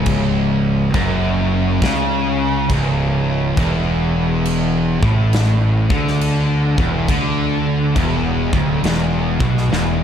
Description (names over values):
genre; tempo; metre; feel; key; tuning
stoner and doom metal; 68 BPM; 4/4; swing 65% on 8ths; unclear; A4 = 435 Hz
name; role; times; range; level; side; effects
distorted electric guitar; riff; 0.0-10.0 s; C#2 to D3; -22 LUFS; equal; distortion
thick fuzz guitar; riff; 0.0-10.0 s; C#2 to D3; -21 LUFS; left 7 dB; distortion
thick fuzz guitar; riff; 0.0-10.0 s; C#2 to D3; -21 LUFS; right 7 dB; distortion
fuzz fingered electric bass; bass; 0.0-10.0 s; C#1 to D2; -22 LUFS; left 1 dB; overdrive
big rock drum kit; drums; 0.1-10.0 s; crash cymbal, kick drum, snare drum; -23 LUFS; equal; none
room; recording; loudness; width
light reverb, small room ambience; dark, warm production; -15 LUFS; side -8 dB against mid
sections
0.0-10.0 A section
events
drum fill 9.7-10.0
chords
0.0 C#sus4; 3.6 E5